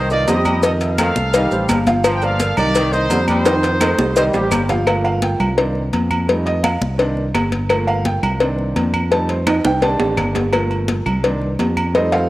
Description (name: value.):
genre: latin, salsa.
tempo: 170 BPM.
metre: 4/4.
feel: straight.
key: unclear.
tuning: A4 = 440 Hz.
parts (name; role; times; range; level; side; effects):
clear trumpet section; melody; 0.0-4.7 s; Bb3 to G5; -22 LUFS; equal; cassette tape.
bright trombone section; second line; 0.0-4.6 s; D3 to G3; -25 LUFS; left 1 dB; none.
clear baby grand piano; accompaniment; 0.0-12.3 s; Eb3 to A5; -21 LUFS; right 1 dB; none.
modern bright fingered electric bass; bass; 0.0-12.3 s; G1 to F2; -21 LUFS; equal; none.
congas; percussion; 0.1-12.3 s; none; -23 LUFS; left 2 dB; none.
maracas; percussion; 0.1-4.9 s; none; -32 LUFS; right 4 dB; none.
cowbell; percussion; 0.3-12.3 s; none; -21 LUFS; left 3 dB; none.
timbales and agogo bells; percussion; 0.3-11.9 s; none; -23 LUFS; right 3 dB; none.
claves; percussion; 0.5-11.9 s; none; -29 LUFS; left 2 dB; none.
room: light reverb, studio reverb.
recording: home recording on cassette.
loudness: -15 LUFS.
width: side -16 dB against mid.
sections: 0.0-4.9 A section; 4.9-12.3 B section.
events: drum fill 3.5-4.9, 9.5-10.5; grand piano solo 4.9-12.3.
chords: 0.0 Cmadd9; 0.6 F7; 1.3 Cm; 2.0 Gm7; 2.8 Cmadd9; 3.5 F7; 4.2 Cm; 4.9 Gm7; 5.6 Cmadd9; 6.3 F7; 7.0 Cmadd9; 7.7 Gm7; 8.4 Cmadd9; 9.1 F7; 9.8 Cmadd9; 10.5 Gm7; 11.2 Cmadd9.